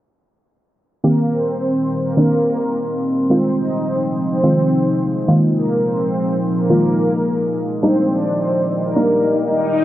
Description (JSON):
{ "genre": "pop", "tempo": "106 BPM", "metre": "4/4", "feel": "straight", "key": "unclear", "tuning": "A4 = 443 Hz", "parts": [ { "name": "soft round pluck", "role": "accompaniment", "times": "1.0-9.8 s", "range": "Eb3 to G4", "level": "-17 LUFS", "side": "equal", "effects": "chorus, cassette tape" }, { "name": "glassy FM pad", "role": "sustained chords", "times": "1.3-9.8 s", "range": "Bb2 to D5", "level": "-20 LUFS", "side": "left 1 dB", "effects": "ensemble chorus, built-in reverb, cassette tape" }, { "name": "swell", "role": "sound effects", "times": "8.6-9.8 s", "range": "none", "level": "-21 LUFS", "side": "left 3 dB", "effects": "none" } ], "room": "wet booth ambience, RT60 0.2 s", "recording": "home recording on cassette, low-pass filter", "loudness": "-15 LUFS", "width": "side -13 dB against mid", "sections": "1.0-9.8 A section", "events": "filter sweep 1.0-9.8; swell 8.6-9.8", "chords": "1.0 Cm7; 3.3 Fm7; 5.3 Bb7sus4; 7.8 Ebmaj7", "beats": "| 1.04 1.60 2.17 2.74 | 3.30 3.87 4.43 5.00 | 5.57 6.13 6.70 7.26 | 7.83 8.40 8.96 9.53" }